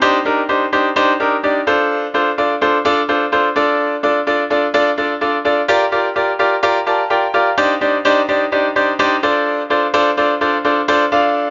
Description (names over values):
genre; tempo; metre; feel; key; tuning
pop; 127 BPM; 4/4; straight; C dorian; A4 = 438 Hz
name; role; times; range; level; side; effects
bright concert grand piano; solo; 0.0-11.5 s; D4 to A5; -15 LUFS; equal; dub echo
room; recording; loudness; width
light reverb, small room reverb; nothing above 7.5 kHz; -15 LUFS; mono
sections
0.0-7.6 A section; 7.6-11.5 B section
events
grand piano fill 6.6-7.6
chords
0.0 Cmadd9; 1.7 F6; 3.6 Dm; 5.7 Gm7; 7.6 Cmadd9; 9.2 F6